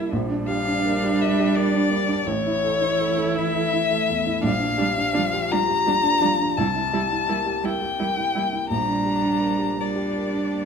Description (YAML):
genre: neoclassical piano and strings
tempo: 56 BPM (dotted quarters)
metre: 6/8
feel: rubato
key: unclear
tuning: A4 = 440 Hz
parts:
  - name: rich violin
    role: melody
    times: 0.0-10.7 s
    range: C#5 to Bb5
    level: -23 LUFS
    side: left 5 dB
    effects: none
  - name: rich cello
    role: second line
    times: 0.0-10.7 s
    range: E3 to G3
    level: -28 LUFS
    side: right 4 dB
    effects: none
  - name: felt-muted upright piano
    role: accompaniment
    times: 0.0-10.7 s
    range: A1 to Bb4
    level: -26 LUFS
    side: right 1 dB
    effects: none
  - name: rich viola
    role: accompaniment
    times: 0.0-10.7 s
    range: D4 to E4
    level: -28 LUFS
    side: right 3 dB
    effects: none
room: moderate large studio reverb, RT60 1.4 s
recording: minimal, uncompressed stereo recording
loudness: -20 LUFS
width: side -6 dB against mid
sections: 0.0-10.7 A section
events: none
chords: 0.1 Gm/Bb; 2.3 A; 4.4 Bb6; 6.6 C7; 8.7 Gm/Bb